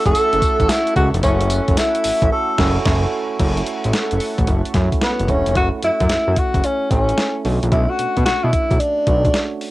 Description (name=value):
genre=R&B, new jack swing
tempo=111 BPM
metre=4/4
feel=swing 66% on 16ths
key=unclear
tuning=A4 = 440 Hz
part: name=mellow tenor saxophone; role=melody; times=0.0-9.6 s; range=B3 to A4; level=-19 LUFS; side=equal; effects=cassette tape
part: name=tine electric piano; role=accompaniment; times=0.0-9.7 s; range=G3 to C#5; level=-25 LUFS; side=right 6 dB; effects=cassette tape
part: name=chorused pulse-width pad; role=sustained chords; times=0.0-5.5 s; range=A4 to C#6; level=-28 LUFS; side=equal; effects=cassette tape
part: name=fat analog bass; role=bass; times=0.1-9.3 s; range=E1 to B2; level=-19 LUFS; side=equal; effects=none
part: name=crisp 8-bit digital drum machine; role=drums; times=0.1-9.7 s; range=crash cymbal, hi-hat, kick drum, snare drum, tambourine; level=-20 LUFS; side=equal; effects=none
room=light reverb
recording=home recording on cassette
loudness=-15 LUFS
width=side -17 dB against mid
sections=0.0-3.4 A section; 3.4-5.6 B section; 5.6-9.7 C section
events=band accent 2.3-3.4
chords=0.0 F#m7; 7.4 Bm9